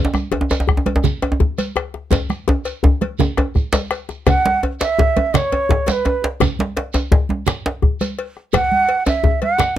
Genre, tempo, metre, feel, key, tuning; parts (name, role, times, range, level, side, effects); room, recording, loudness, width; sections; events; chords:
west african traditional, West African drum ensemble; 112 BPM (dotted quarters); 12/8; straight; A4 = 440 Hz
djembe; percussion; 0.0-9.8 s; -20 LUFS; right 1 dB
bombo; percussion; 0.1-9.8 s; -18 LUFS; equal
congas; percussion; 0.1-9.8 s; -22 LUFS; right 7 dB
shekere; percussion; 0.1-9.8 s; -28 LUFS; right 4 dB
cowbell; percussion; 0.3-9.6 s; -26 LUFS; left 5 dB
djembe; percussion; 0.3-9.8 s; -22 LUFS; left 6 dB
breathy bright bansuri; melody; 4.3-9.8 s; B4 to F#5; -17 LUFS; right 3 dB
little or no reverb; close, detailed microphones; -16 LUFS; side -12 dB against mid
0.0-4.3 A section; 4.3-9.8 B section
drum fill 2.1-4.3